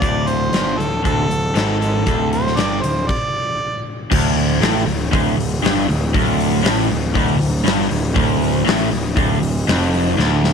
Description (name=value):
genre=blues rock power trio and southern rock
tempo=119 BPM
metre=4/4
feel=straight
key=D minor from 4.1 s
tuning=A4 = 441 Hz
part: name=bright harmonica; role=melody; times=0.0-3.9 s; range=A4 to D5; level=-22 LUFS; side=right 1 dB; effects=overdrive
part: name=crunchy overdriven guitar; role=riff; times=0.0-10.5 s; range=D2 to A2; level=-18 LUFS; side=equal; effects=none
part: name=fuzz picked electric bass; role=bass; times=0.0-10.5 s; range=D1 to A1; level=-21 LUFS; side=right 1 dB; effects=overdrive
part: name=huge arena drum kit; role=drums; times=0.0-10.5 s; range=crash cymbal, hi-hat, kick drum, snare drum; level=-21 LUFS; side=left 3 dB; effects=none
room=light reverb, studio reverb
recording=1960s-style stereo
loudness=-15 LUFS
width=side -6 dB against mid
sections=0.0-4.1 A section; 4.1-10.5 B section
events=stop 3.1-4.1; drum fill 10.2-10.5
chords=0.0 D5; 4.1 Dm